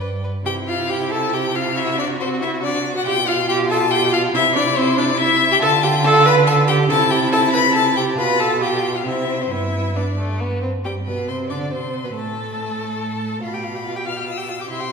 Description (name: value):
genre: quick classical-period movement for string quartet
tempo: 140 BPM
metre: 3/4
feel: rubato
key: C major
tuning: A4 = 437 Hz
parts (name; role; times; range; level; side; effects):
- rich violin; melody; 0.0-14.9 s; C5 to F6; -20 LUFS; left 6 dB; none
- rich violin; second line; 0.0-14.9 s; A3 to G5; -26 LUFS; left 2 dB; none
- rich viola; accompaniment; 0.0-14.9 s; G3 to D5; -22 LUFS; right 3 dB; none
- rich cello; bass; 0.0-14.9 s; G2 to D3; -23 LUFS; right 3 dB; none
room: wet recital hall reverb, RT60 1.8 s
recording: recorded in a church or concert hall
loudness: -16 LUFS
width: side -5 dB against mid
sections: 0.5-10.8 A section; 10.8-14.9 B section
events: none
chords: 0.0 G5; 0.5 C; 1.8 D9/C; 3.1 G7/B; 4.3 C; 5.6 Dmadd11; 6.9 C; 8.2 G9/B; 9.1 C; 9.5 G; 10.8 C5/G; 12.1 N.C.; 13.4 G7/B